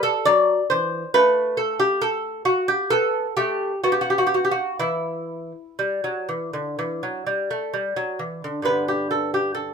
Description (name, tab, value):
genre	classical, baroque-style dance for lute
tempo	60-69 BPM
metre	4/4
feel	rubato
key	E minor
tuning	A4 = 440 Hz
part	lute	solo	0.0-9.7 s	G2 to D5	-20 LUFS	equal	none
room	light reverb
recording	minimal, uncompressed stereo recording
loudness	-20 LUFS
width	side -6 dB against mid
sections	0.0-8.7 A section; 8.7-9.7 A section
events	none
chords	0.0 A5; 1.2 N.C.; 2.9 Gadd9; 3.9 N.C.; 4.8 Em; 8.7 G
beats	0.26 | 1.15 2.03 2.93 3.85 | 4.79 5.79 6.77 7.72 | 8.65 9.55